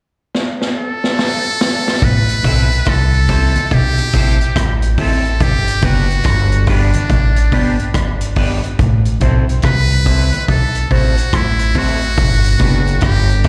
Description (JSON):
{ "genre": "roots reggae", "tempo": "71 BPM", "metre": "4/4", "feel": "swing 64% on 16ths", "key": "A dorian", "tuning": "A4 = 440 Hz", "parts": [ { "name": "vintage drum kit", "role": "drums", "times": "0.3-13.5 s", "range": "hi-hat, kick drum, rim click, snare drum", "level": "-21 LUFS", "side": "equal", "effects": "none" }, { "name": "trumpet with metal mute", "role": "melody", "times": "0.8-13.5 s", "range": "D4 to B4", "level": "-21 LUFS", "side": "equal", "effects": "dub echo, slapback echo" }, { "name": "upright bass", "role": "bass", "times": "2.0-13.5 s", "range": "F#1 to C2", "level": "-17 LUFS", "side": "equal", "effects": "none" }, { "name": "congas", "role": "percussion", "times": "2.0-13.5 s", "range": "none", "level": "-25 LUFS", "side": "equal", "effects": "none" }, { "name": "electric guitar at the edge of break-up", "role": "accompaniment", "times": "2.4-13.5 s", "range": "B3 to C5", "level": "-26 LUFS", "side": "equal", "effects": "phaser, dub echo, slapback echo" } ], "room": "small room ambience", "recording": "live gig heard through the venue's PA, recital hall reverb", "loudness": "-15 LUFS", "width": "mono", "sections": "0.0-2.0 A section; 2.0-13.5 B section", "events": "drum fill 0.3-2.0", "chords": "0.0 N.C.; 2.0 Am; 5.4 G; 8.8 Am; 12.2 G" }